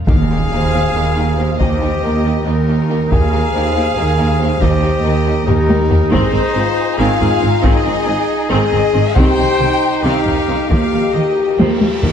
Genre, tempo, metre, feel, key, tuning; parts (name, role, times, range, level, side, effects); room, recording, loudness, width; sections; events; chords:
cinematic, epic orchestral film score; 277 BPM (eighths); 7/8; straight; Eb major; A4 = 439 Hz
warm studio violin section; melody; 0.1-11.6 s; Bb4 to G5; -22 LUFS; left 4 dB
warm symphonic violin section; second line; 0.1-12.0 s; Eb4 to Ab4; -26 LUFS; left 3 dB
warm symphonic viola section; accompaniment; 0.1-12.1 s; Eb3 to C4; -22 LUFS; right 2 dB
bright trumpet section; stabs; 0.1-11.6 s; Eb4 to C5; -21 LUFS; left 1 dB
warm studio double bass section; bass; 0.1-12.1 s; Ab1 to Eb2; -20 LUFS; right 3 dB
warm symphonic cello section; bass; 0.1-12.1 s; Eb2 to Eb3; -20 LUFS; right 2 dB
taiko ensemble; drums; 0.1-12.1 s; -17 LUFS; equal
impact and cymbal swell; sound effects; 0.1-1.6, 11.5-12.1 s; -26 LUFS; equal
mellow French horn section; sustained chords; 0.5-12.0 s; Eb4 to C5; -20 LUFS; left 4 dB
moderate scoring stage reverb, RT60 1.6 s; dark, warm production; -12 LUFS; side -8 dB against mid
0.1-12.1 A section
impact 0.1-1.6; drum fill 5.5-6.1, 11.6-12.1; cymbal swell 11.5-12.1
0.1 Eb; 6.1 Ab; 9.2 Cm; 10.7 Ebadd9